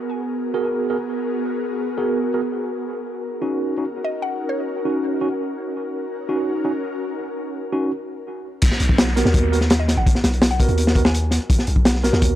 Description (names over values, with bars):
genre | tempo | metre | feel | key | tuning
drum and bass, jungle | 167 BPM | 4/4 | straight | G# minor | A4 = 443 Hz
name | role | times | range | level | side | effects
ethereal airy pad | sustained chords | 0.0-7.9 s | B3 to A#4 | -26 LUFS | left 1 dB | ensemble chorus, built-in reverb, vintage 12-bit sampler grit
tine electric piano | stabs | 0.5-12.4 s | B3 to A#4 | -25 LUFS | right 2 dB | medium stereo tremolo, dub echo
mallet-like synth pluck | melody | 4.0-4.8, 9.8-11.4 s | C#5 to G#5 | -31 LUFS | left 1 dB | chorus, phaser, dub echo
long sustained 808-style bass | bass | 8.6-12.4 s | G#1 to D#2 | -20 LUFS | equal | tube saturation
crunchy breakbeat drum kit | drums | 8.6-12.3 s | crash cymbal, hi-hat, kick drum, snare drum | -17 LUFS | equal | none
downlifter | sound effects | 8.6-11.5 s | none | -32 LUFS | equal | none
room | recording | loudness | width
little or no reverb | dry, gritty hardware recording | -18 LUFS | side -13 dB against mid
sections
0.0-8.6 A section; 8.6-12.4 B section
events
break 7.9-8.6; drop 8.6-12.4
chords
0.0 G#m9; 2.9 D#m7; 8.6 G#m9 (rootless)